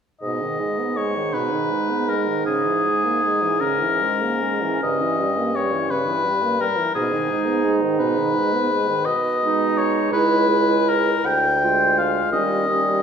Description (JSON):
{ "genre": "classical, slow romantic movement for wind quintet", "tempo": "48-58 BPM (dotted quarters)", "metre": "6/8", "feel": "rubato", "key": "G# minor", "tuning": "A4 = 439 Hz", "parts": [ { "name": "warm oboe", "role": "second line", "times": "0.2-13.0 s", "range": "G#4 to G5", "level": "-21 LUFS", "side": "left 4 dB", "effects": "none" }, { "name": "clear French horn", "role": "accompaniment", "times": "0.2-13.0 s", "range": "B2 to B3", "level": "-27 LUFS", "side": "equal", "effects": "none" }, { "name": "clear clarinet", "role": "accompaniment", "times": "0.2-13.0 s", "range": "C#4 to F4", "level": "-26 LUFS", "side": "right 7 dB", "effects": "none" }, { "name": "mellow bassoon", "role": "bass", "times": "0.2-13.0 s", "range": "C#2 to B2", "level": "-25 LUFS", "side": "right 2 dB", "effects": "none" } ], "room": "wet recital hall reverb, RT60 1.7 s", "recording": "recorded in a church or concert hall", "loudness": "-18 LUFS", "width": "side -7 dB against mid", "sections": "0.2-13.0 A section", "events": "none", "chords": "0.2 G#m; 2.5 A#m7b5/G#; 4.8 Gdim7; 7.0 G#m; 9.1 G#m/B; 10.1 C#m7; 11.3 Ddim; 12.3 D#7", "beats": "| 0.23 1.35 | 2.47 3.61 | 4.82 5.91 | 6.96 8.01 | 9.07 10.12 | 11.26 12.33" }